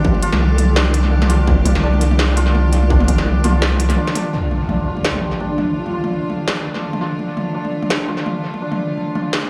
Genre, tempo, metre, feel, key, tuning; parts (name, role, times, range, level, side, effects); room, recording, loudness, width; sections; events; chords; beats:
half-time drum and bass; 168 BPM; 4/4; swing 56% on 16ths, half-time; D minor; A4 = 441 Hz
bright chamber string section; sustained chords; 0.0-9.5 s; D3 to G4; -30 LUFS; equal; sidechain pumping
santur; arpeggios; 0.0-9.5 s; D4 to F4; -28 LUFS; equal; vintage 12-bit sampler grit, low-pass filter, tape echo
deep soft wobble bass; bass; 0.0-4.0 s; A1 to C2; -17 LUFS; equal; chorus
electronic kick drum; drums; 0.0-3.2 s; -19 LUFS; equal; distortion
industrial drum kit; drums; 0.1-9.5 s; hi-hat, snare drum, toms; -23 LUFS; equal; tape echo
breathy flute-like synth lead; melody; 0.5-0.9, 5.2-6.1 s; D4 to A4; -32 LUFS; equal
impact; sound effects; 4.3-5.8 s; -28 LUFS; equal
metallic inharmonic drone; texture; 5.9-9.5 s; D4; -31 LUFS; equal; chorus, built-in reverb
light reverb; echo-heavy mix, studio reverb; -17 LUFS; mono
0.0-4.3 A section; 4.3-9.5 B section
drop 0.0-4.3; break 4.0-4.3; impact 4.3-5.8; filter sweep on santur 4.3-9.5
0.0 Dm
| 0.05 0.40 0.76 1.12 | 1.48 1.83 2.19 2.55 | 2.90 3.26 3.62 3.98 | 4.33 4.69 5.05 5.40 | 5.76 6.12 6.48 6.83 | 7.19 7.55 7.90 8.26 | 8.62 8.98 9.33